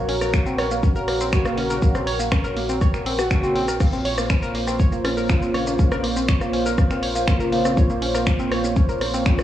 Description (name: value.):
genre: melodic techno.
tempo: 121 BPM.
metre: 4/4.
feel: straight.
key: Bb minor.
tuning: A4 = 442 Hz.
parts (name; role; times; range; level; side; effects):
warm analog pad; sustained chords; 0.0-9.4 s; Bb3 to Db5; -25 LUFS; right 1 dB; chorus, sidechain pumping, cassette tape.
analog pluck; arpeggios; 0.0-9.4 s; Bb3 to Db5; -26 LUFS; equal; chorus, sidechain pumping, cassette tape, analog delay.
tight sequencer bass; bass; 0.0-9.4 s; Bb1; -30 LUFS; equal; sidechain pumping.
punchy analog drum machine; drums; 0.1-9.4 s; crash cymbal, finger snaps, hi-hat, rim click, shaker; -27 LUFS; left 1 dB; sidechain pumping on perc, sidechain pumping on hats, sidechain pumping on cymbals.
electronic kick drum; drums; 0.3-9.4 s; none; -19 LUFS; equal; none.
analog synth brass; stabs; 1.3-9.4 s; Db3 to Gb4; -27 LUFS; equal; chorus, sidechain pumping, cassette tape, analog delay.
room: moderate spring reverb, RT60 1.9 s.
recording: home recording on cassette, small room ambience.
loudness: -18 LUFS.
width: side -12 dB against mid.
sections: 0.0-9.4 A section.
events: none.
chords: 0.0 Gb/Bb; 3.8 Bbm.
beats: 0.33 0.83 1.33 | 1.82 2.32 2.81 3.31 | 3.81 4.30 4.80 5.29 | 5.79 6.28 6.78 7.28 | 7.77 8.27 8.76 9.26.